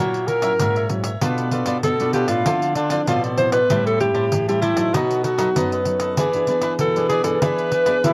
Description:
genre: samba and choro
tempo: 97 BPM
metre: 4/4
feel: straight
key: unclear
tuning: A4 = 444 Hz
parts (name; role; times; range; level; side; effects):
- breathy alto saxophone; melody; 0.0-8.1 s; D4 to C5; -22 LUFS; equal; cassette tape
- cavaquinho; accompaniment; 0.0-8.1 s; D#4 to A5; -30 LUFS; equal; cassette tape
- nylon-string guitar; accompaniment; 0.0-8.1 s; F#2 to G#4; -30 LUFS; equal; cassette tape
- nylon-string guitar; bass; 0.0-8.1 s; G#2 to B3; -26 LUFS; equal; none
- pandeiro; percussion; 0.1-8.1 s; none; -28 LUFS; equal; none
- clear trombone; second line; 8.0-8.1 s; E4; -20 LUFS; equal; cassette tape
room: moderate booth ambience, RT60 0.2 s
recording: home recording on cassette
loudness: -20 LUFS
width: mono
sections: 0.0-8.1 A section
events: none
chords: 0.0 F#7/A#; 1.2 Bm7b5; 2.5 Dm9; 3.7 Am7; 4.9 B7; 6.2 E7

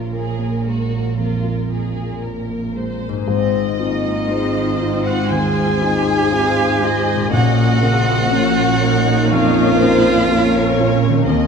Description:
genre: cinematic, emotional film score for orchestra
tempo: 57-63 BPM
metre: 4/4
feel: rubato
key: Bb minor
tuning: A4 = 435 Hz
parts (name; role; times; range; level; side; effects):
- warm symphonic violin section; melody; 0.0-11.5 s; Bb4 to F5; -27 LUFS; left 4 dB; none
- dark grand piano; accompaniment; 0.0-11.5 s; Bb1 to Db5; -22 LUFS; left 2 dB; none
- dark studio viola section; accompaniment; 0.0-11.5 s; Ab3 to Db5; -24 LUFS; equal; none
- concert harp; arpeggios; 0.0-11.5 s; Ab2 to F5; -28 LUFS; left 10 dB; none
- rich symphonic double bass section; bass; 0.0-11.5 s; Ab1 to Eb2; -23 LUFS; right 8 dB; none
- warm symphonic cello section; bass; 0.0-11.5 s; Ab2 to Eb3; -24 LUFS; right 2 dB; none
- rich symphonic violin section; second line; 0.1-11.3 s; F4 to Ab5; -26 LUFS; left 1 dB; none
- dark French horn section; sustained chords; 3.3-11.5 s; Db3 to C5; -22 LUFS; left 6 dB; none
- dark cello; melody; 3.8-11.3 s; Eb4 to Ab4; -23 LUFS; right 3 dB; none
- mellow large flute ensemble; second line; 3.8-11.3 s; Eb5 to Ab5; -26 LUFS; left 1 dB; none
- warm oboe; second line; 3.8-11.3 s; Eb5 to Ab5; -26 LUFS; right 2 dB; none
- timpani; percussion; 7.3-8.8 s; Bb2; -22 LUFS; equal; none
room: moderate scoring stage reverb, RT60 2.0 s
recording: none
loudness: -14 LUFS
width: side -6 dB against mid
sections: 0.0-3.3 A section; 3.3-11.5 A section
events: none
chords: 0.0 Bbm; 3.3 Ab6; 7.3 Bbm

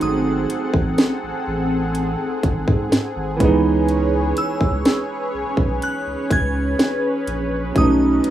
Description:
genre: contemporary R&B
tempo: 62 BPM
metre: 4/4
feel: straight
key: C# minor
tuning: A4 = 440 Hz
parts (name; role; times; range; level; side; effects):
- glassy synth bell; melody; 0.0-8.3 s; D#6 to G#6; -28 LUFS; right 1 dB; chorus, tape echo
- warm baby grand piano; accompaniment; 0.0-8.3 s; E3 to D#4; -23 LUFS; right 4 dB; none
- lush unison pad; sustained chords; 0.0-8.3 s; B#3 to F#5; -23 LUFS; equal; chorus, phaser
- saturated sub bass; bass; 0.0-8.2 s; G#1 to G#2; -23 LUFS; equal; none
- trap drum kit; drums; 0.0-8.3 s; hi-hat, kick drum, snare drum; -18 LUFS; equal; none
room: little or no reverb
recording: rough home demo mix, small room ambience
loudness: -17 LUFS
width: side -12 dB against mid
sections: 0.0-8.3 A section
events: none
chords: 0.0 G#7b9; 3.4 C#m7; 7.8 B9

